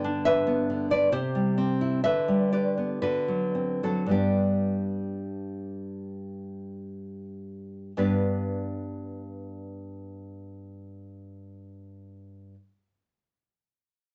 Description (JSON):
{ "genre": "romantic piece for solo classical guitar", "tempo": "42-71 BPM", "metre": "3/4", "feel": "rubato", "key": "G major", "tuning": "A4 = 440 Hz", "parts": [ { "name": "nylon-string guitar", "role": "solo", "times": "0.0-12.6 s", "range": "G2 to G5", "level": "-29 LUFS", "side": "equal", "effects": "none" } ], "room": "wet small room reverb, RT60 0.5 s", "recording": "nothing above 7.9 kHz", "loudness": "-27 LUFS", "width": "mono", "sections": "0.0-8.0 A section; 8.0-12.0 B section", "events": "slowing down 0.0-8.0", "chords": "0.0 G; 1.1 C; 2.0 G/D; 3.0 D7; 4.1 G", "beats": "0.26 | 1.13 2.04 3.03 | 4.12 5.33 6.61 | 7.98 9.33 10.63" }